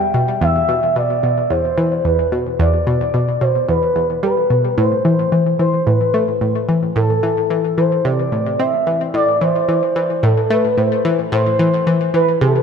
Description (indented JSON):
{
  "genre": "ambient",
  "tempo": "110 BPM",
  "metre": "4/4",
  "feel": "straight",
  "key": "A minor",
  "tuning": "A4 = 440 Hz",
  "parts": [
    { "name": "expressive portamento lead", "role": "melody", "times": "0.0-12.6 s", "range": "A4 to G5", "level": "-17 LUFS", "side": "equal", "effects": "wide subtle chorus, ping-pong delay" },
    { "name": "analog pluck", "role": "riff", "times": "0.0-12.6 s", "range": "E2 to C4", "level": "-17 LUFS", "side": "equal", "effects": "chorus, ping-pong delay" }
  ],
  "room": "wet plate reverb, RT60 3.6 s",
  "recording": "echo-heavy mix",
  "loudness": "-14 LUFS",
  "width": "side -6 dB against mid",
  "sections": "0.0-12.6 A section",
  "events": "none",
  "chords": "0.0 E5; 4.8 Am",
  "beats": "| 0.41 0.96 1.50 2.05 | 2.60 3.14 3.69 4.23 | 4.78 5.32 5.87 6.41 | 6.96 7.50 8.05 8.60 | 9.14 9.69 10.23 10.78 | 11.32 11.87 12.41"
}